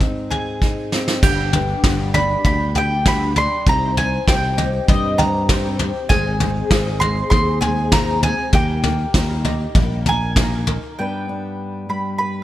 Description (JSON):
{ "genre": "indie folk with a building arrangement", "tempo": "99 BPM", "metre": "4/4", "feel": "straight", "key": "unclear", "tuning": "A4 = 440 Hz", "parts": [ { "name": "mandolin", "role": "melody", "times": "0.0-12.4 s", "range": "Eb5 to C6", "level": "-22 LUFS", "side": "equal", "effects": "analog delay" }, { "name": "fingerpicked steel-string acoustic guitar", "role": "accompaniment", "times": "0.0-1.2, 11.0-12.4 s", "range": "G2 to B4", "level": "-25 LUFS", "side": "left 1 dB", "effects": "none" }, { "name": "soft brush drum kit", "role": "drums", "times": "0.0-10.8 s", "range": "crash cymbal, kick drum, snare drum, toms", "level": "-18 LUFS", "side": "equal", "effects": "none" }, { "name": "picked twelve-string acoustic guitar", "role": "accompaniment", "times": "1.2-11.0 s", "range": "G2 to Ab4", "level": "-27 LUFS", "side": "left 5 dB", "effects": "ensemble chorus" }, { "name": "ukulele", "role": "arpeggios", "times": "1.2-11.0 s", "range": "Eb4 to Bb5", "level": "-28 LUFS", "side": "right 4 dB", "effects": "analog delay" }, { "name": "fingered electric bass", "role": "bass", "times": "1.2-10.8 s", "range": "G1 to G2", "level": "-22 LUFS", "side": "equal", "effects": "none" } ], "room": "light reverb, small room ambience", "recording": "none", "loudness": "-16 LUFS", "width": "side -14 dB against mid", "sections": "0.0-1.2 A section; 1.2-11.0 B section; 11.0-12.4 C section", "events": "drum fill 0.6-1.2", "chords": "0.0 Ab; 1.2 G; 3.7 Cm; 6.1 Ab; 8.5 Eb; 11.0 G" }